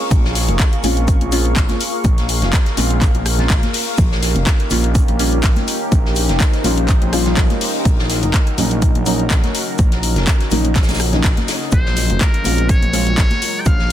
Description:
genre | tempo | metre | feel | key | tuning
deep house | 124 BPM | 4/4 | swing 54% on 16ths | unclear | A4 = 440 Hz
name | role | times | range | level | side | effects
warm analog pad | sustained chords | 0.0-13.9 s | Gb3 to Db6 | -28 LUFS | equal | chorus, phaser, sidechain pumping
deep mellow chord stab | stabs | 0.0-13.1 s | Gb3 to F4 | -22 LUFS | equal | chorus, phaser, sidechain pumping, analog delay
deep dark ambient pad | texture | 0.0-13.9 s | Db4 to Db6 | -26 LUFS | equal | chorus, built-in reverb, sidechain pumping
smooth gliding synth bass | bass | 0.1-13.9 s | F1 to Bb1 | -19 LUFS | equal | sidechain pumping
electronic kick drum | drums | 0.1-13.8 s | none | -15 LUFS | equal | overdrive, small room ambience
house drum kit | drums | 0.1-13.8 s | handclaps, hi-hat, rim click | -23 LUFS | left 2 dB | overdrive, small room ambience
loose indie drum kit | drums | 0.1-13.9 s | hi-hat, shaker, snare drum | -28 LUFS | equal | sidechain pumping on hats, high-pass filter on hats, small room ambience, high-pass filter on snare, sidechain pumping on perc, high-pass filter on perc, high-pass filter on room
congas and bongos | percussion | 0.1-13.8 s | none | -28 LUFS | left 3 dB | none
trumpet with metal mute | melody | 11.7-13.9 s | Bb4 to G5 | -22 LUFS | left 1 dB | none
room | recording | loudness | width
little or no reverb | dense, heavily limited modern master | -13 LUFS | side -11 dB against mid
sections
0.0-13.9 A section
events
none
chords
0.0 Bbm7; 4.0 Eb7; 7.9 Ebm9/F; 11.7 Bbm7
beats
| 0.11 0.60 1.08 1.56 | 2.05 2.53 3.02 3.50 | 3.98 4.47 4.95 5.44 | 5.92 6.40 6.89 7.37 | 7.86 8.34 8.82 9.31 | 9.79 10.27 10.76 11.24 | 11.73 12.21 12.69 13.18 | 13.66

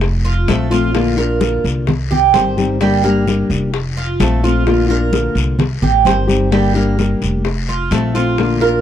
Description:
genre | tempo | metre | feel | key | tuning
latin, Cuban son and guajira | 129 BPM | 4/4 | straight | unclear | A4 = 440 Hz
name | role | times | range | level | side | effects
nylon-string guitar | accompaniment | 0.0-8.8 s | D3 to G4 | -17 LUFS | left 4 dB | none
upright bass | bass | 0.0-8.8 s | F1 to C2 | -18 LUFS | equal | none
bongos | percussion | 0.0-8.8 s | none | -25 LUFS | left 6 dB | none
congas | percussion | 0.0-8.8 s | none | -21 LUFS | left 2 dB | none
guiro | percussion | 0.0-8.8 s | none | -30 LUFS | left 8 dB | none
Cuban tres | arpeggios | 0.2-8.8 s | G3 to C5 | -18 LUFS | right 7 dB | none
room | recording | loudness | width
little or no reverb | dark, warm production | -13 LUFS | side -10 dB against mid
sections
0.0-8.8 A section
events
none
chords
0.0 F; 0.9 Bb; 1.9 Cm; 2.8 Gm; 3.7 F; 4.7 Bb; 5.6 Cm; 6.5 Gm; 7.5 F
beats
0.02 0.49 | 0.95 1.41 1.88 2.34 | 2.81 3.27 3.74 4.20 | 4.67 5.13 5.60 6.06 | 6.53 6.99 7.46 7.92 | 8.38

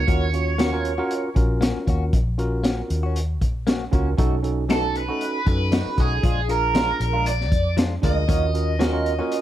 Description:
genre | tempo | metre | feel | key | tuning
straight-eighth soul blues | 117 BPM | 4/4 | swing 53% on 16ths | Eb minor | A4 = 440 Hz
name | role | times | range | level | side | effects
overdriven electric guitar | melody | 0.0-1.3, 4.7-9.4 s | Ab4 to Eb5 | -25 LUFS | right 3 dB | phaser
bright tine electric piano | accompaniment | 0.0-9.4 s | Db4 to Db5 | -27 LUFS | moving between left 1 dB and right 8 dB | auto-pan
vintage muted fingered electric bass | bass | 0.0-9.2 s | Bb1 to F#2 | -24 LUFS | equal | none
direct-recorded clean electric guitar | stabs | 0.1-9.3 s | Eb3 to Gb4 | -30 LUFS | left 6 dB | phaser, plate reverb
crunchy breakbeat drum kit | drums | 0.1-9.4 s | hi-hat, kick drum, snare drum | -23 LUFS | equal | none
room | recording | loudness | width
light reverb | none | -19 LUFS | side -12 dB against mid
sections
0.0-9.4 A section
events
none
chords
0.1 Ebm7; 4.2 B7; 6.2 Bb7; 8.3 Ebm7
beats
| 0.08 0.59 1.10 1.62 | 2.13 2.64 3.15 3.67 | 4.18 4.69 5.21 5.72 | 6.23 6.75 7.26 7.77 | 8.29 8.80 9.31

